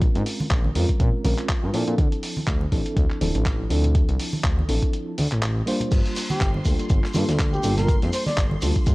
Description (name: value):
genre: deep house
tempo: 122 BPM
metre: 4/4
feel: swing 56% on 16ths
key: G dorian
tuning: A4 = 440 Hz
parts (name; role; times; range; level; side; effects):
- mellow FM electric piano; stabs; 0.0-8.9 s; F3 to C5; -28 LUFS; equal; chorus, tremolo, sidechain pumping, analog delay
- smooth gliding synth bass; bass; 0.0-8.9 s; D1 to Bb2; -23 LUFS; equal; sidechain pumping
- dusty soul sampler-style drum kit; drums; 0.0-8.9 s; crash cymbal, handclaps, hi-hat; -31 LUFS; equal; none
- electronic kick drum; drums; 0.0-8.9 s; none; -22 LUFS; equal; none
- congas; percussion; 0.4-8.6 s; none; -30 LUFS; right 1 dB; none
- damped 70s drum kit; drums; 5.9-8.9 s; hi-hat, snare drum; -39 LUFS; left 1 dB; none
- shekere; percussion; 5.9-8.9 s; none; -37 LUFS; right 2 dB; none
- string machine, violins; texture; 5.9-8.9 s; C6; -40 LUFS; equal; ensemble chorus
- trumpet with bucket mute; melody; 6.3-8.5 s; G4 to D5; -29 LUFS; equal; tape echo
room: small room ambience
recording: dry, gritty hardware recording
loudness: -20 LUFS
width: side -21 dB against mid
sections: 0.0-8.9 A section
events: break 4.9-5.9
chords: 0.0 Bbm9; 2.0 Dm9; 5.9 Gm9